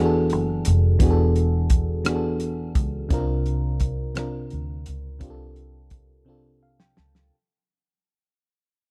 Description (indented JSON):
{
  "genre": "slow six-eight R&B",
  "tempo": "57 BPM (dotted quarters)",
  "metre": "6/8",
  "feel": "straight",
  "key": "unclear",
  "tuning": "A4 = 440 Hz",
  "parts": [
    { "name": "FM electric piano", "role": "accompaniment", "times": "0.0-7.3 s", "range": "C3 to A5", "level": "-27 LUFS", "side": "equal", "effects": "none" },
    { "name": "vintage muted fingered electric bass", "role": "bass", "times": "0.0-7.3 s", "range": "E1 to D2", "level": "-26 LUFS", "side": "equal", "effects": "none" },
    { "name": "warm soul drum kit", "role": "drums", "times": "0.3-7.3 s", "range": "hi-hat, kick drum, rim click, snare drum", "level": "-24 LUFS", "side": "equal", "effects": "none" }
  ],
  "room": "small room ambience",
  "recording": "none",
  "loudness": "-23 LUFS",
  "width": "mono",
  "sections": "0.0-7.3 A section",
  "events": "fade-out 0.0-7.3; drum fill 6.3-7.3; FM electric piano fill 6.3-7.3",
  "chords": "0.0 E9sus4; 3.1 C9sus4"
}